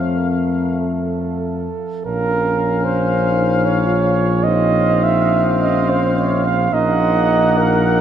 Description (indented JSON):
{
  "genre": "classical, hymn-like piece for brass band",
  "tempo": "46-54 BPM",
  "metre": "4/4",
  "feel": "rubato",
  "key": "Bb minor",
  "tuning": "A4 = 441 Hz",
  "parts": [
    { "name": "clear trumpet section", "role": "melody", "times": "0.0-8.0 s", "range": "F5 to Gb5", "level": "-25 LUFS", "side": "left 4 dB", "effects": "none" },
    { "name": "mellow flugelhorn", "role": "second line", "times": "0.0-8.0 s", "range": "A4 to F5", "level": "-19 LUFS", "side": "right 4 dB", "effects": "none" },
    { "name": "brilliant trombone", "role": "accompaniment", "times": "0.0-8.0 s", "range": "A3 to Db4", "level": "-25 LUFS", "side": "right 1 dB", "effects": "none" },
    { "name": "dark euphonium", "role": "accompaniment", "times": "0.0-8.0 s", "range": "C4 to F4", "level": "-24 LUFS", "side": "left 3 dB", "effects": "none" },
    { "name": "dark tuba", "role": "bass", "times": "0.0-8.0 s", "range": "Bb1 to F2", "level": "-19 LUFS", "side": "left 1 dB", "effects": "none" }
  ],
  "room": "wet cathedral reverb, RT60 4.8 s",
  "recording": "none",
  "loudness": "-14 LUFS",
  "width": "side -9 dB against mid",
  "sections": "0.0-2.1 A section; 2.1-8.0 B section",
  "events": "none",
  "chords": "0.0 F; 2.1 Bbm; 6.7 Ebm/Bb",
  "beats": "0.80 | 2.06 3.26 4.45 5.61 | 6.72 7.85"
}